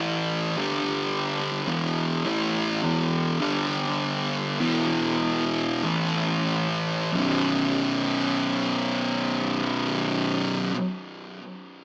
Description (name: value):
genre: metal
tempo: 45-55 BPM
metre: 4/4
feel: straight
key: B minor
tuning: A4 = 439 Hz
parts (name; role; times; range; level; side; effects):
- thick fuzz guitar; solo; 0.0-10.7 s; B1 to A3; -26 LUFS; equal; distortion, tape echo
room: moderate stone room reverb, RT60 1.1 s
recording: rough rehearsal-room recording, tube saturation, small speaker sound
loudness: -25 LUFS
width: mono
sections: 0.0-7.1 A section; 7.1-11.8 B section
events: slowing down 0.0-7.1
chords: 0.0 A5; 0.6 G5; 1.7 E5; 3.4 G5; 4.6 E5; 5.8 A5; 7.1 B5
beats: 0.04 1.13 | 2.25 3.40 4.60 5.84 | 7.14 8.47 9.80